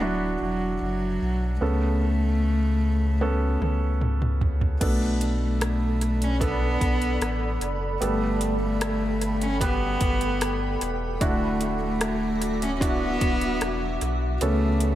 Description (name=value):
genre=pop ballad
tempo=75 BPM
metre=4/4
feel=straight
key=B minor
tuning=A4 = 440 Hz
part: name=warm cello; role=melody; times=0.0-14.9 s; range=F#3 to C#4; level=-28 LUFS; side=left 1 dB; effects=tape echo
part: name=clear grand piano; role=accompaniment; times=0.0-14.9 s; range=G2 to B4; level=-30 LUFS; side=right 2 dB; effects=tape echo
part: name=warm sub bass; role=bass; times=0.0-14.9 s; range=D1 to C#2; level=-26 LUFS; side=equal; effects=none
part: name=pop drum kit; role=drums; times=3.2-14.9 s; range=crash cymbal, hi-hat, kick drum, rim click, toms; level=-28 LUFS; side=equal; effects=none
part: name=granular cloud pad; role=sustained chords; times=5.5-14.9 s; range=F#4 to D6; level=-32 LUFS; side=right 1 dB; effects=built-in reverb
room=light reverb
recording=echo-heavy mix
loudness=-22 LUFS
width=side -13 dB against mid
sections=0.0-4.8 A section; 4.8-14.9 B section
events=drum fill 3.2-4.8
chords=0.0 Dadd9; 1.6 Aadd9/C#; 4.8 Bm7; 8.0 Gadd9; 11.2 Dadd9; 14.4 Aadd9/C#